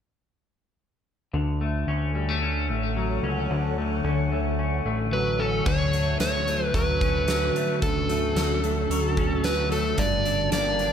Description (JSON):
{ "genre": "dream pop", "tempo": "111 BPM", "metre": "4/4", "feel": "straight", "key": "D major", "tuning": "A4 = 440 Hz", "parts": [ { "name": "ethereal airy pad", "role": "sustained chords", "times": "2.1-10.9 s", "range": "D3 to A5", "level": "-31 LUFS", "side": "right 1 dB", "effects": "ensemble chorus, built-in reverb, phaser" }, { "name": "clean electric guitar", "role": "arpeggios", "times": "1.3-10.9 s", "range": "G2 to D4", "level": "-28 LUFS", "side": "left 4 dB", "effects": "lush chorus, ping-pong delay" }, { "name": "fat analog bass", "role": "bass", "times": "1.3-10.9 s", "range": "G1 to D2", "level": "-28 LUFS", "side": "equal", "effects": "none" }, { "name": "overdriven slide guitar", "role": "melody", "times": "5.1-10.9 s", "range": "A4 to D5", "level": "-26 LUFS", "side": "right 1 dB", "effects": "ping-pong delay" }, { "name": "huge arena drum kit", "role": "drums", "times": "5.7-10.9 s", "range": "crash cymbal, hi-hat, kick drum, snare drum", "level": "-29 LUFS", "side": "right 1 dB", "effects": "none" } ], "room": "moderate recital hall reverb, RT60 1.5 s", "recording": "none", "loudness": "-22 LUFS", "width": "side -8 dB against mid", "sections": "1.3-5.7 A section; 5.7-10.9 B section", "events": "none", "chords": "1.3 Dmaj7; 10.0 Gmadd9", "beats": "| 1.34 1.88 2.42 2.96 | 3.50 4.04 4.58 5.12 | 5.66 6.20 6.74 7.28 | 7.82 8.36 8.90 9.44 | 9.98 10.53" }